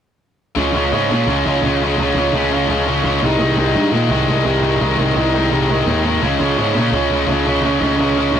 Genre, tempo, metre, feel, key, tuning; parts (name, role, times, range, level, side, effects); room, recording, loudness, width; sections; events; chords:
punk; 170 BPM; 4/4; straight; A4 = 444 Hz
distorted electric guitar; riff; 0.6-8.4 s; Ab2 to Db4; -18 LUFS; right 4 dB; distortion
tight distorted guitar; riff; 0.6-8.4 s; C3 to F4; -19 LUFS; left 7 dB; distortion
fuzz picked electric bass; bass; 0.6-8.4 s; C2 to Bb2; -18 LUFS; equal; overdrive
light reverb; rough rehearsal-room recording, warm saturation; -14 LUFS; side -8 dB against mid
0.6-8.4 A section
0.6 Db; 3.2 Ab/C; 6.2 Db